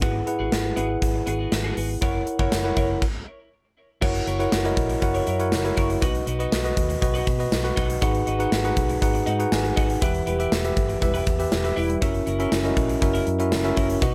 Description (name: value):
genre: 1980s-style pop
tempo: 120 BPM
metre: 4/4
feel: straight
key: unclear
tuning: A4 = 440 Hz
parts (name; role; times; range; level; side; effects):
- bell-like tine electric piano; accompaniment; 0.0-14.1 s; G#2 to G#5; -27 LUFS; equal; none
- twelve-string electric guitar; riff; 0.0-14.1 s; B3 to C#5; -36 LUFS; equal; subtle chorus, digital delay
- vintage muted fingered electric bass; bass; 0.0-14.1 s; E1 to B2; -30 LUFS; equal; none
- gated 80s drum kit; drums; 0.0-14.1 s; crash cymbal, hi-hat, kick drum, snare drum, tambourine; -27 LUFS; equal; none
- mellow synth brass; stabs; 10.3-12.0 s; G3 to B4; -30 LUFS; equal; chorus
room: light reverb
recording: none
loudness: -23 LUFS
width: mono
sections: 0.0-4.0 A section; 4.0-14.1 B section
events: stop 3.0-4.0; band accent 10.0-12.0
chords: 0.0 Eadd9/G#; 2.0 F#7; 6.0 B; 8.0 G#m7; 10.0 Em; 12.0 F#7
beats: | 0.02 0.52 1.02 1.52 | 2.02 2.52 3.02 3.52 | 4.02 4.52 5.02 5.52 | 6.02 6.52 7.02 7.52 | 8.02 8.52 9.02 9.52 | 10.02 10.52 11.02 11.52 | 12.02 12.52 13.02 13.52 | 14.02